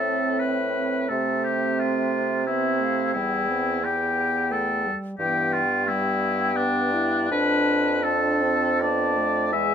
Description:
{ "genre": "classical, slow romantic movement for wind quintet", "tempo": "87 BPM", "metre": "3/4", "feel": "rubato", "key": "A minor", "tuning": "A4 = 439 Hz", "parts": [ { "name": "hollow concert flute", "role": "melody", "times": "0.0-9.7 s", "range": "E5 to A5", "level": "-30 LUFS", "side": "left 6 dB", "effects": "none" }, { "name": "clear oboe", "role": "second line", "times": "0.0-9.7 s", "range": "D4 to E5", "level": "-24 LUFS", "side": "left 2 dB", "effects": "none" }, { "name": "dark clarinet", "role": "accompaniment", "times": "0.0-9.7 s", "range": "B3 to E4", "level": "-31 LUFS", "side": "right 6 dB", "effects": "none" }, { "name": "mellow French horn", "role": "accompaniment", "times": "0.0-9.7 s", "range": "E3 to E4", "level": "-31 LUFS", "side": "equal", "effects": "none" }, { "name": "clear bassoon", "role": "bass", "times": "0.0-9.7 s", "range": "E2 to C3", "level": "-27 LUFS", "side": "right 3 dB", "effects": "none" } ], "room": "light reverb", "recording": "minimal, uncompressed stereo recording", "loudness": "-21 LUFS", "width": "side -8 dB against mid", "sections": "0.0-9.7 A section", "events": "none", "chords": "0.0 Am; 1.1 Am/C; 3.1 Em; 5.2 Em/G; 7.3 Dm/F" }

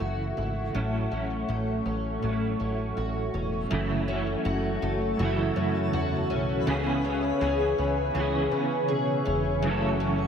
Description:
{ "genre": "dream pop", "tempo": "81 BPM", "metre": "4/4", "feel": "straight", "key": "F# minor", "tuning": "A4 = 441 Hz", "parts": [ { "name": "clean electric guitar", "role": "accompaniment", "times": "0.0-10.3 s", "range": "F#2 to A4", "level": "-30 LUFS", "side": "right 3 dB", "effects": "tremolo, ensemble chorus" }, { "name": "warbly tape-like pad", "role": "sustained chords", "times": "0.0-10.3 s", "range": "A4 to C#6", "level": "-32 LUFS", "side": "equal", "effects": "chorus, built-in reverb" }, { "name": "picked twelve-string acoustic guitar", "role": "arpeggios", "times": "0.0-10.3 s", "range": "F#2 to G#4", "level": "-30 LUFS", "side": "left 3 dB", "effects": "ensemble chorus, tape echo" }, { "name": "plucky analog bass", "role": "bass", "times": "0.0-10.3 s", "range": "E1 to C#3", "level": "-31 LUFS", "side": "equal", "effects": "none" }, { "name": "twinkling granular texture", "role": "texture", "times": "4.9-10.3 s", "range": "A4 to C#5", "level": "-42 LUFS", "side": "equal", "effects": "built-in reverb, tape echo" } ], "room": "moderate lush hall reverb, RT60 2.6 s", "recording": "none", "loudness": "-25 LUFS", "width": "side -7 dB against mid", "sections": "0.0-3.7 A section; 3.7-10.3 B section", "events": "none", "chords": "0.0 F#m7; 0.7 A6; 3.7 F#m7; 6.7 C#m7; 9.6 F#m7" }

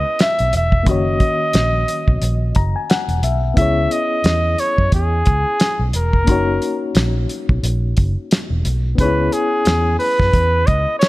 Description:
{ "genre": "lush 1970s-style soul", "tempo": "89 BPM", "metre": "4/4", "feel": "swing 58% on 16ths", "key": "F# mixolydian", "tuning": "A4 = 443 Hz", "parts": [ { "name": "warm flugelhorn", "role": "melody", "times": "0.0-11.1 s", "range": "G#4 to E5", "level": "-19 LUFS", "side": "equal", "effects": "none" }, { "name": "mellow reed electric piano", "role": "accompaniment", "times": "0.0-11.1 s", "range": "D#3 to A#5", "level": "-24 LUFS", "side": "left 4 dB", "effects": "fast tremolo" }, { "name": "vintage muted fingered electric bass", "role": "bass", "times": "0.0-10.9 s", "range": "E1 to F#2", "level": "-18 LUFS", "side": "equal", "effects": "none" }, { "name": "cloth-damped thuddy drum kit", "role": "drums", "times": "0.2-11.1 s", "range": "hi-hat, kick drum, snare drum", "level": "-18 LUFS", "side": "equal", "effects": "none" } ], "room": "small room ambience", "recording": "none", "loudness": "-14 LUFS", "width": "side -18 dB against mid", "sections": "0.0-11.1 A section", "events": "reed electric piano fill 2.2-3.6", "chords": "0.0 C#m7; 0.9 F#6; 3.6 C#m7; 6.3 F#6; 9.0 C#m7" }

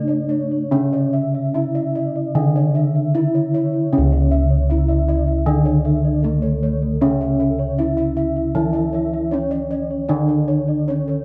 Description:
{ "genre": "Javanese gamelan", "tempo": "77 BPM", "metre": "4/4", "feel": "uneven beats", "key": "unclear", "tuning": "A4 = 441 Hz", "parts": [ { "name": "gamelan-type bronze metallophone", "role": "melody", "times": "0.0-11.2 s", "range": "A3 to E4", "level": "-25 LUFS", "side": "equal", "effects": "none" }, { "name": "gamelan-type bronze metallophone", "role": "accompaniment", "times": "0.0-11.2 s", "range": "C#3 to A3", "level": "-24 LUFS", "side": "equal", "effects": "none" }, { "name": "gamelan-type bossed gongs", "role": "arpeggios", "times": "0.0-11.2 s", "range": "A4 to E5", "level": "-33 LUFS", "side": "equal", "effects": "none" }, { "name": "gamelan-type bronze metallophone", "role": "arpeggios", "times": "0.0-11.2 s", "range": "A4 to E5", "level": "-31 LUFS", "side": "equal", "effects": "none" }, { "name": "gamelan-type bossed gongs", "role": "bass", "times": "0.0-11.0 s", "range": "C#2 to D4+35c", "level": "-24 LUFS", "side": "equal", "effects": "none" } ], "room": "moderate recital hall reverb, RT60 1.6 s", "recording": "close, detailed microphones", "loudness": "-19 LUFS", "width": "mono", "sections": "0.0-3.9 A section; 3.9-11.2 B section", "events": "none", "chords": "none" }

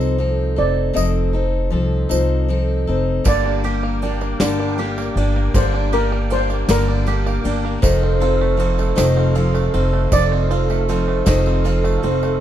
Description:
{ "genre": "acoustic folk duo or small band", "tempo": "52 BPM (dotted quarters)", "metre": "6/8", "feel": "straight", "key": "unclear", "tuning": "A4 = 439 Hz", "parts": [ { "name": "steel pan", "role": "melody", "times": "0.0-12.4 s", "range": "Bb4 to Eb5", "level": "-21 LUFS", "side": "right 1 dB", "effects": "plate reverb" }, { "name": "picked steel-string acoustic guitar", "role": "accompaniment", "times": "0.0-12.4 s", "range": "G2 to A4", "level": "-21 LUFS", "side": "left 2 dB", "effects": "none" }, { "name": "upright bass", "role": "bass", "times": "0.0-12.4 s", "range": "F1 to C2", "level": "-19 LUFS", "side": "equal", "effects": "none" }, { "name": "tambourine", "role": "percussion", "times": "0.0-12.3 s", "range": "none", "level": "-33 LUFS", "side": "right 9 dB", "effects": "none" }, { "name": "tonewheel organ", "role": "sustained chords", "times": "3.3-12.4 s", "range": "A4 to D6", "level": "-32 LUFS", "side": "equal", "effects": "slow rotary speaker, chorus vibrato" }, { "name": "bluegrass banjo", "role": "arpeggios", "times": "3.3-12.4 s", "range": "D3 to G4", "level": "-26 LUFS", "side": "right 8 dB", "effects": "none" }, { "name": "soft brush drum kit", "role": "drums", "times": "3.3-12.2 s", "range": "kick drum, ride cymbal, snare drum", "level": "-23 LUFS", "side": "equal", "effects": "none" } ], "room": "little or no reverb", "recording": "dark, warm production", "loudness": "-16 LUFS", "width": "side -11 dB against mid", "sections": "0.0-3.3 A section; 3.3-12.4 B section", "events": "steel pan solo 3.3-12.4", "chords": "0.0 F7; 3.3 Gm; 7.8 F7" }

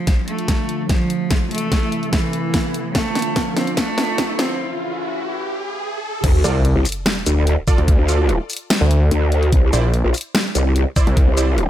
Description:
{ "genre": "heavy wobble dubstep", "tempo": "146 BPM", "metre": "4/4", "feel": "half-time", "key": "D minor", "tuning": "A4 = 445 Hz", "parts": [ { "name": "rich cello", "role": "melody", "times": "0.0-4.6 s", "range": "E3 to C4", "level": "-24 LUFS", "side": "right 1 dB", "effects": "ping-pong delay" }, { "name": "lush unison pad", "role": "sustained chords", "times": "0.0-6.2 s", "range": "C3 to F4", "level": "-27 LUFS", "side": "right 1 dB", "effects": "chorus, sidechain pumping" }, { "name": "riser and sub drop", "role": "sound effects", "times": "1.2-7.9 s", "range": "none", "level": "-28 LUFS", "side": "equal", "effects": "none" }, { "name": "dubstep drum kit", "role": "drums", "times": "0.1-11.7 s", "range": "crash cymbal, hi-hat, shaker, snare drum", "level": "-22 LUFS", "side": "equal", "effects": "none" }, { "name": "electronic kick drum", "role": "drums", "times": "0.1-11.3 s", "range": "none", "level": "-17 LUFS", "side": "equal", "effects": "none" }, { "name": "growl bass", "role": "bass", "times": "6.2-11.7 s", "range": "Bb1 to D2", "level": "-16 LUFS", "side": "equal", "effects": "chorus, overdrive" }, { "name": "supersaw stab", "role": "stabs", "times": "6.4-11.5 s", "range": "E4 to D5", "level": "-26 LUFS", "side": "right 5 dB", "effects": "ping-pong delay" }, { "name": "snarling distorted saw bass", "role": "bass", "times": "6.4-11.3 s", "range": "Bb1 to D2", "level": "-16 LUFS", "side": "equal", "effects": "distortion, overdrive" } ], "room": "light reverb", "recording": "high-pass filter", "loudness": "-16 LUFS", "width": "side -12 dB against mid", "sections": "0.0-6.2 A section; 6.2-11.7 B section", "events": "build-up 0.0-6.2; drum fill 0.0-4.6; filter sweep on analog synth pad 0.0-6.2; riser 1.2-6.2; break 4.6-6.2; drop 6.2-11.7; impact 6.2-7.9", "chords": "0.0 Dm; 1.3 Am; 3.0 Dm; 4.6 A; 6.2 N.C.; 9.5 Cadd9" }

